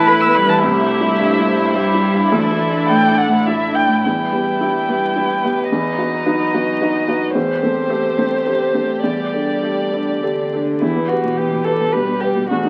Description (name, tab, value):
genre	neoclassical piano and strings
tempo	101-112 BPM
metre	3/4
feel	rubato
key	E minor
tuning	A4 = 440 Hz
part	dark violin	melody	0.0-12.7 s	E4 to E6	-22 LUFS	equal	none
part	warm cello	second line	0.0-12.7 s	D3 to E4	-27 LUFS	equal	none
part	dark viola	accompaniment	0.0-3.8, 10.8-12.7 s	F#4 to B4	-26 LUFS	equal	none
part	felt-muted upright piano	accompaniment	0.0-12.7 s	C2 to B4	-21 LUFS	equal	none
part	warm symphonic string section	sustained chords	0.0-10.8 s	F#3 to D5	-25 LUFS	equal	none
room	wet club reverb, RT60 0.7 s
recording	very old 78 rpm record, vinyl crackle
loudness	-17 LUFS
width	mono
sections	0.0-4.0 A section; 4.0-10.8 B section; 10.8-12.7 C section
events	none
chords	0.0 Asus2; 0.6 C; 2.3 Dsus2; 4.0 Em; 5.7 B/E; 7.3 C6/E; 9.0 Dsus4/E; 10.8 Em